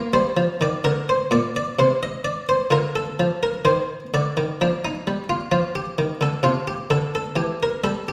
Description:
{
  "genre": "classical, baroque-style suite movement for harpsichord",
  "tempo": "64 BPM",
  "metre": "3/4",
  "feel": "rubato",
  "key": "unclear",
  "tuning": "A4 = 440 Hz",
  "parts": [
    { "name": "buff-stop harpsichord", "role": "solo", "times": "0.0-8.1 s", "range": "Bb2 to Eb5", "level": "-22 LUFS", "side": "equal", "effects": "none" }
  ],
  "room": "wet stone room reverb, RT60 1.2 s",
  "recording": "heard from further back in the room",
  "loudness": "-22 LUFS",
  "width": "mono",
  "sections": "0.0-8.1 A section",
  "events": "none",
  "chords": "0.0 Bb; 1.8 N.C.; 2.7 F13/D; 5.5 F5; 7.4 Edim",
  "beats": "0.83 1.77 | 2.71 3.66 4.61 | 5.53 6.44 7.36"
}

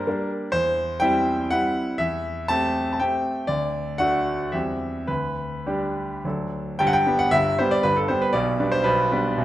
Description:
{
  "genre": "classical, romantic triple-time dance for piano with dotted rhythms",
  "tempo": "99-132 BPM",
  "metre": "3/4",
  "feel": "rubato",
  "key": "G major",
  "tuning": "A4 = 441 Hz",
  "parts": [
    { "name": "bright concert grand piano", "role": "solo", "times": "0.0-9.4 s", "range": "G1 to A5", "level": "-21 LUFS", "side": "equal", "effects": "none" }
  ],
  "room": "wet recital hall reverb, RT60 1.4 s",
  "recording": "none",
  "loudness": "-21 LUFS",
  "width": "side -14 dB against mid",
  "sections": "0.0-6.8 A section; 6.8-9.4 B section",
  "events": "none",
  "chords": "0.0 Gm; 0.5 C/E; 2.0 Am7/E; 3.5 D; 4.5 C/E; 5.1 G/D; 6.2 D; 6.8 G; 8.3 G/B",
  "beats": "0.07 | 0.53 1.01 1.50 | 1.99 2.50 3.00 | 3.49 3.99 4.53 | 5.08 5.67 6.25 | 6.80 7.33 7.85 | 8.34 8.86 9.38"
}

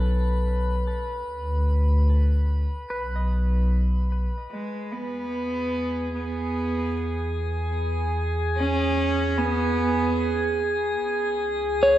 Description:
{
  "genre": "ambient",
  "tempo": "74 BPM",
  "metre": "4/4",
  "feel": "straight",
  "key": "E major from 4.5 s",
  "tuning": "A4 = 440 Hz",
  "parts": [
    { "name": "clean electric guitar", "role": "arpeggios", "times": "0.0-4.2, 11.8-12.0 s", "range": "A4 to D#5", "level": "-25 LUFS", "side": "equal", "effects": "spring reverb, ping-pong delay" },
    { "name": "round analog bass", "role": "bass", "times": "0.0-12.0 s", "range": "B1 to E2", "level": "-24 LUFS", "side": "equal", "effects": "none" },
    { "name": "drifting glass-harmonics texture", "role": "texture", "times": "0.0-12.0 s", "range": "G#4 to B5", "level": "-29 LUFS", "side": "equal", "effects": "chorus, built-in reverb" },
    { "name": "rich cello", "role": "melody", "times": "4.5-10.6 s", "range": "G#3 to C#4", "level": "-27 LUFS", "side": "right 2 dB", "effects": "ping-pong delay" }
  ],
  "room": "moderate scoring stage reverb, RT60 2.0 s",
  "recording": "worn, warbling old tape, cassette tape, warbly pitch drift",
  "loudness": "-22 LUFS",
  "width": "side -13 dB against mid",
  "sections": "0.0-4.5 A section; 4.5-12.0 B section",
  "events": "fade-out on clean electric guitar 0.0-4.5; fade-out on synth texture 0.0-4.5; fade-in on analog synth bass 4.5-12.0; fade-in on synth texture 4.5-12.0; fade-in on cello 4.5-12.0",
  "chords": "0.0 Asus2/B; 1.3 Bm/D; 2.9 B; 4.5 E; 11.0 C#5",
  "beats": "0.47 | 1.28 2.09 2.90 3.71 | 4.52 5.33 6.14 6.95 | 7.76 8.57 9.38 10.20 | 11.01 11.82"
}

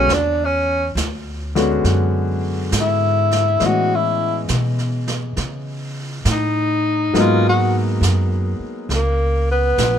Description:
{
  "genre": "jazz ballad",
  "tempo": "68 BPM",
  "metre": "4/4",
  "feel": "swing 67% on 8ths",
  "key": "unclear",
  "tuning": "A4 = 439 Hz",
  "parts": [
    { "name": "breathy tenor saxophone", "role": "melody", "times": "0.0-10.0 s", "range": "A#3 to F#4", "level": "-18 LUFS", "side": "left 1 dB", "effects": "none" },
    { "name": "warm concert grand piano", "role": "accompaniment", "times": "0.0-8.9 s", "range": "D3 to D#5", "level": "-22 LUFS", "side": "left 3 dB", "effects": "none" },
    { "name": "upright bass", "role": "bass", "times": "0.0-10.0 s", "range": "A#1 to C#3", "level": "-20 LUFS", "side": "right 1 dB", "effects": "none" },
    { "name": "jazz brush drum kit", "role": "drums", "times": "0.1-10.0 s", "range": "brushed snare drum, hi-hat, snare drum", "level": "-27 LUFS", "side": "right 4 dB", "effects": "none" }
  ],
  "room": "little or no reverb",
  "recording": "none",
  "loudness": "-16 LUFS",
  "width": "side -9 dB against mid",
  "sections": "0.0-10.0 A section",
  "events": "tenor saxophone solo 0.0-10.0",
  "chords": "0.1 E13; 3.6 Amaj9#11; 7.1 G#m7; 8.9 N.C.",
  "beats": "| 0.09 0.97 1.85 2.74 | 3.62 4.50 5.38 6.26 | 7.14 8.03 8.90 9.79"
}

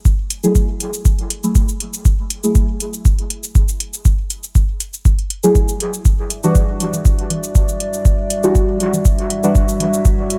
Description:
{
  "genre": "dub techno",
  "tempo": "120 BPM",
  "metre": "4/4",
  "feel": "straight",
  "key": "F# phrygian",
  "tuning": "A4 = 442 Hz",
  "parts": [
    { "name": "deep mellow chord stab", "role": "stabs", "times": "0.0-9.6 s", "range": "E3 to G#4", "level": "-22 LUFS", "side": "equal", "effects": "chorus, phaser, sidechain pumping, dub echo" },
    { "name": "electronic kick drum", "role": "drums", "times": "0.1-10.2 s", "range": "none", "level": "-17 LUFS", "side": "equal", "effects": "overdrive" },
    { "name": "electronic shaker and hi-hat", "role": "drums", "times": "0.1-10.4 s", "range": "none", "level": "-26 LUFS", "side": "equal", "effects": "overdrive" },
    { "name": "dark analog pad", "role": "sustained chords", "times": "6.1-10.4 s", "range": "G3 to E5", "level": "-24 LUFS", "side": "equal", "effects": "subtle chorus, sidechain pumping" },
    { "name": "congas", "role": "percussion", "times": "6.8-9.9 s", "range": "none", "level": "-28 LUFS", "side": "equal", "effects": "sidechain pumping on perc, dub echo" }
  ],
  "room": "light reverb",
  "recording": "none",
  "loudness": "-17 LUFS",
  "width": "mono",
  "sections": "0.0-10.4 A section",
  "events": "none",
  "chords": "0.0 F#m9; 6.1 Em9",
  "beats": "| 0.05 0.55 1.05 1.55 | 2.05 2.55 3.05 3.55 | 4.05 4.55 5.05 5.55 | 6.05 6.55 7.05 7.55 | 8.05 8.55 9.05 9.55 | 10.05"
}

